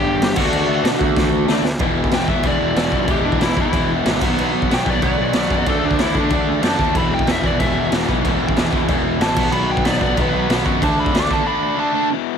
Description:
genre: punk rock.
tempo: 187 BPM.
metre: 4/4.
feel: straight.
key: unclear.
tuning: A4 = 440 Hz.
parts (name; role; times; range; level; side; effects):
biting lead guitar; melody; 0.0-12.1 s; D4 to D6; -22 LUFS; equal; overdrive.
overdriven electric guitar; riff; 0.0-12.4 s; E2 to D4; -22 LUFS; left 16 dB; none.
sludgy distorted guitar; riff; 0.0-12.1 s; E2 to D4; -22 LUFS; right 16 dB; overdrive.
fuzz picked electric bass; bass; 0.0-11.4 s; E1 to D3; -24 LUFS; equal; overdrive.
raw garage drum kit; drums; 0.2-11.4 s; crash cymbal, kick drum, snare drum; -20 LUFS; equal; none.
room: light reverb.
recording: none.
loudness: -15 LUFS.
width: side -7 dB against mid.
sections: 0.0-1.8 A section; 1.8-12.1 B section.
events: drum fill 1.2-1.8; lead electric guitar solo 1.8-12.1.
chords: 0.4 D; 1.8 E5; 4.2 B5; 5.7 D5; 7.0 E5; 9.4 B5; 10.8 D5.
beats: 0.21 | 0.53 0.85 1.17 1.49 | 1.81 2.13 2.45 2.77 | 3.09 3.41 3.73 4.06 | 4.38 4.70 5.02 5.34 | 5.67 5.99 6.31 6.63 | 6.95 7.28 7.60 7.92 | 8.24 8.56 8.88 9.21 | 9.53 9.85 10.17 10.49 | 10.81 11.13 11.45 11.78 | 12.10.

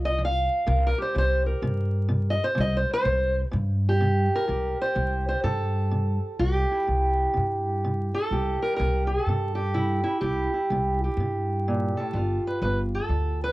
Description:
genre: acoustic country blues, solo or duo.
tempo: 126 BPM.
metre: 4/4.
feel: swing 65% on 8ths.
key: C mixolydian.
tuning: A4 = 440 Hz.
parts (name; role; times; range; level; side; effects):
fingerpicked steel-string acoustic guitar; melody; 0.0-13.5 s; G2 to F5; -25 LUFS; right 1 dB; cassette tape.
upright bass; bass; 0.0-13.5 s; G1 to G2; -26 LUFS; equal; none.
room: little or no reverb.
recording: home recording on cassette, vinyl crackle.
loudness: -23 LUFS.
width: side -18 dB against mid.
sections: 0.0-4.5 A section; 4.5-13.5 B section.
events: steel-string acoustic guitar solo 0.0-4.5.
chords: 0.0 F5; 0.7 C5; 12.1 G7.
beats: 0.22 | 0.69 1.17 1.64 2.12 | 2.59 3.07 3.55 4.02 | 4.50 4.97 5.45 5.93 | 6.41 6.88 7.36 7.84 | 8.32 8.80 9.27 9.75 | 10.23 10.71 11.18 11.66 | 12.14 12.62 13.09.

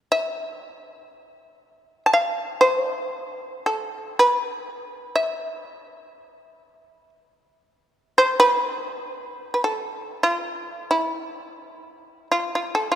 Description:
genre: japanese traditional, Japanese chamber music.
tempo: free time.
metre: none.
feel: none.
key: E miyako bushi.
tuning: A4 = 437 Hz.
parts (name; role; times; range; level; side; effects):
shamisen; solo; 0.1-13.0 s; E4 to A5; -21 LUFS; equal; none.
room: wet church reverb, RT60 3.5 s.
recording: minimal, uncompressed stereo recording.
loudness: -21 LUFS.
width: side -10 dB against mid.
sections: 0.0-13.0 A section.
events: slowing down 7.8-13.0.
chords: none.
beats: free time.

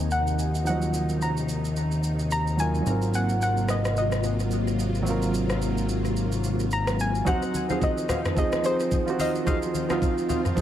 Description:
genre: amapiano.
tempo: 109 BPM.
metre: 4/4.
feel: swing 58% on 16ths.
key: Eb dorian.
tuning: A4 = 438 Hz.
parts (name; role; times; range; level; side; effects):
soft round pluck; melody; 0.0-10.3 s; C5 to Bb5; -30 LUFS; left 1 dB; chorus, tape echo.
dark grand piano; accompaniment; 0.0-10.6 s; F3 to Eb5; -30 LUFS; right 4 dB; tape echo.
string machine, violas; sustained chords; 0.0-10.6 s; C3 to F4; -30 LUFS; left 1 dB; phaser, ensemble chorus, sidechain pumping.
fat analog bass; bass; 0.0-7.2 s; Ab1 to Eb2; -26 LUFS; left 1 dB; none.
smooth R&B drum kit; drums; 0.1-10.6 s; hi-hat, kick drum, rim click, shaker, toms; -31 LUFS; equal; tape echo.
percussive organ stab; stabs; 7.3-10.4 s; Gb4 to Gb5; -34 LUFS; left 2 dB; chorus, phaser, tape echo.
congas; percussion; 7.3-10.6 s; none; -34 LUFS; left 2 dB; none.
room: moderate echo chamber reverb, RT60 1.8 s, digital ambience.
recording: echo-heavy mix.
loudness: -23 LUFS.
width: side -11 dB against mid.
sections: 0.0-7.3 A section; 7.3-10.6 B section.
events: none.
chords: 0.0 Ebm69; 2.9 Ab13; 7.3 Ebm69.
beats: 0.11 | 0.66 1.21 1.76 2.31 | 2.86 3.41 3.96 4.51 | 5.06 5.61 6.17 6.71 | 7.27 7.82 8.37 8.92 | 9.47 10.02 10.57.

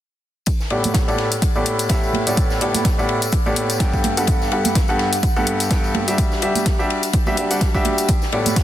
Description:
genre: piano house.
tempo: 126 BPM.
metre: 4/4.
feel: swing 56% on 16ths.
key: unclear.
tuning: A4 = 439 Hz.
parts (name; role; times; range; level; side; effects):
compact cocktail drum kit; drums; 0.5-8.6 s; ride cymbal, snare drum; -30 LUFS; left 3 dB; high-pass filter on cymbals, soft clipping on snare, high-pass filter on snare, high-pass filter on room.
electronic hi-hat; drums; 0.5-8.6 s; none; -27 LUFS; left 2 dB; overdrive.
electronic kick drum; drums; 0.5-8.6 s; none; -19 LUFS; equal; overdrive.
tambourine and congas; percussion; 0.5-8.6 s; none; -28 LUFS; right 5 dB; none.
clear baby grand piano; riff; 0.7-8.6 s; G2 to G5; -20 LUFS; equal; vintage 12-bit sampler grit, sidechain pumping, low-pass filter, tape echo.
room: light reverb.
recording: dense, heavily limited modern master.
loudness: -16 LUFS.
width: side -12 dB against mid.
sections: 0.5-8.6 A section.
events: filter sweep on grand piano 0.5-8.6.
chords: 0.5 A9sus4; 4.0 Gmaj9; 6.2 Em9/G; 8.1 A9sus4.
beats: | 0.47 0.94 1.42 1.90 | 2.37 2.85 3.33 3.80 | 4.28 4.75 5.23 5.71 | 6.18 6.66 7.13 7.61 | 8.09 8.56.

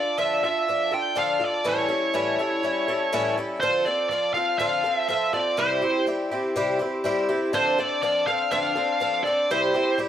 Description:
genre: rock.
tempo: 122 BPM.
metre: 4/4.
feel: straight.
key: D minor from 3.6 s.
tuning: A4 = 439 Hz.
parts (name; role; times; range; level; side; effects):
bluesy overdriven lead guitar; melody; 0.0-10.0 s; C5 to G5; -23 LUFS; right 1 dB; distortion.
picked twelve-string acoustic guitar; accompaniment; 0.0-10.1 s; A2 to A4; -25 LUFS; left 1 dB; none.
room: moderate large studio reverb, RT60 0.9 s.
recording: none.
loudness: -21 LUFS.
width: side -10 dB against mid.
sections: 0.0-3.6 A section; 3.6-10.1 B section.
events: none.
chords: 0.0 Dm; 1.7 A7; 3.6 Dm7; 5.6 C; 7.5 Dm7; 9.5 C.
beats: 0.18 0.67 1.16 | 1.65 2.14 2.63 3.12 | 3.61 4.10 4.59 5.08 | 5.57 6.06 6.55 7.04 | 7.54 8.03 8.52 9.01 | 9.50 9.99.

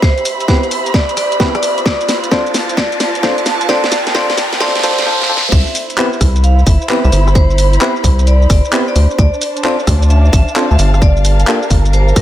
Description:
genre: UK garage, two-step garage.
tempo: 131 BPM.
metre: 4/4.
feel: swing 66% on 16ths.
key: C major.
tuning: A4 = 440 Hz.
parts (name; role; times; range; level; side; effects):
vibraphone with hard mallets; melody; 0.0-12.2 s; Bb4 to F5; -20 LUFS; equal; analog delay.
electronic kick drum; drums; 0.0-12.2 s; none; -12 LUFS; equal; none.
garage drum kit; drums; 0.0-12.2 s; crash cymbal, handclaps, hi-hat, rim click, shaker, snare drum; -18 LUFS; equal; none.
riser; sound effects; 0.1-5.5 s; none; -21 LUFS; equal; none.
dark studio string section; texture; 0.0-12.2 s; D4 to B5; -21 LUFS; right 1 dB; sidechain pumping.
percussive organ stab; stabs; 0.5-11.6 s; Bb3 to C5; -19 LUFS; equal; chorus, analog delay.
rubbery square bass; bass; 5.5-12.2 s; G1 to D2; -10 LUFS; equal; none.
room: moderate plate reverb, RT60 1.5 s.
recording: dreamy mix soaked in reverb, high-pass filter.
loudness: -10 LUFS.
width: side -12 dB against mid.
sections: 0.0-5.5 A section; 5.5-12.2 B section.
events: build-up 0.0-5.5; drum fill 0.0-5.1, 5.1-5.5; filter sweep on synth stab 0.0-5.5; filter sweep 0.0-5.5; riser 0.1-5.5; drop 5.5-12.2.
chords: 0.0 Cmaj7; 1.6 Dm7; 5.5 Cmaj7; 9.0 Dm7; 10.8 Gm9.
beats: | 0.03 0.48 0.94 1.40 | 1.86 2.31 2.77 3.23 | 3.69 4.15 4.61 5.06 | 5.52 5.98 6.44 6.89 | 7.35 7.81 8.27 8.73 | 9.19 9.64 10.10 10.56 | 11.02 11.47 11.93.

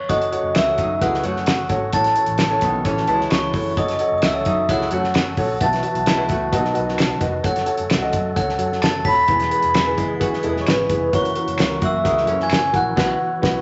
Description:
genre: uptempo 1960s-style soul.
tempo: 131 BPM.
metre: 4/4.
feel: straight.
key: unclear.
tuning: A4 = 440 Hz.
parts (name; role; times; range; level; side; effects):
vibraphone with soft mallets; melody; 0.0-13.6 s; B4 to B5; -24 LUFS; equal; none.
glockenspiel with hard plastic mallets; second line; 0.0-13.0 s; B5 to B6; -32 LUFS; equal; none.
dark upright piano; accompaniment; 0.1-13.6 s; A2 to A5; -28 LUFS; equal; none.
percussive tonewheel organ; sustained chords; 0.1-13.6 s; D#3 to A4; -33 LUFS; equal; slow rotary speaker.
vintage muted fingered electric bass; bass; 0.1-13.6 s; D#1 to B2; -32 LUFS; equal; none.
cloth-damped thuddy drum kit; drums; 0.1-13.6 s; crash cymbal, hi-hat, kick drum, snare drum; -25 LUFS; equal; none.
finger snaps; percussion; 0.5-12.6 s; none; -34 LUFS; equal; none.
archtop guitar, miked and amplified; riff; 0.8-7.2, 10.0-12.9 s; D#3 to F#4; -30 LUFS; equal; none.
room: wet large studio reverb, RT60 1.1 s.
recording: vinyl crackle, nothing above 7.8 kHz.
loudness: -19 LUFS.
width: mono.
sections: 0.1-13.6 A section.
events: band accent 13.0-13.6.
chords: 0.1 F#m; 5.6 Bsus4; 6.5 B; 7.4 F#m; 9.3 E; 11.1 F#7; 13.0 Bsus4.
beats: | 0.10 0.56 1.02 1.48 | 1.94 2.40 2.86 3.31 | 3.77 4.23 4.69 5.15 | 5.61 6.07 6.53 6.99 | 7.45 7.91 8.37 8.83 | 9.29 9.75 10.21 10.67 | 11.13 11.59 12.05 12.51 | 12.96 13.43.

